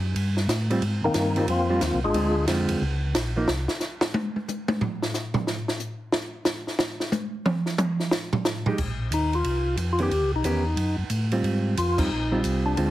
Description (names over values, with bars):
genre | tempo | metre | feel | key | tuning
soul jazz organ trio | 181 BPM | 4/4 | swing 64% on 8ths | unclear | A4 = 440 Hz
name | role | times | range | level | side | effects
mellow tonewheel organ | bass | 0.0-3.7, 8.8-12.9 s | Ab1 to A2 | -26 LUFS | equal | slow rotary speaker
compact cocktail drum kit | drums | 0.2-12.9 s | crash cymbal, hi-hat, kick drum, ride cymbal, snare drum, toms | -27 LUFS | right 1 dB | none
hollow-body jazz guitar | accompaniment | 0.7-3.5, 8.7-12.9 s | D3 to G4 | -27 LUFS | right 2 dB | none
percussive tonewheel organ | melody | 1.0-2.5, 9.1-12.9 s | Eb3 to Ab4 | -25 LUFS | left 2 dB | slow rotary speaker, plate reverb
room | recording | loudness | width
moderate club reverb, RT60 0.7 s | heavily compressed radio sound, multiband compression | -23 LUFS | side -14 dB against mid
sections
0.0-8.8 A section; 8.8-12.9 B section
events
tonewheel organ solo 0.0-8.8; drum solo 3.5-8.8; band accent 11.9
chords
0.0 Eb(#9) (rootless); 0.8 Abmaj13; 2.1 Dm7b5; 2.8 Dbadd9; 3.5 N.C.; 8.1 Ab5; 8.8 Bbsus24; 10.1 Eb7alt; 11.4 Abmaj13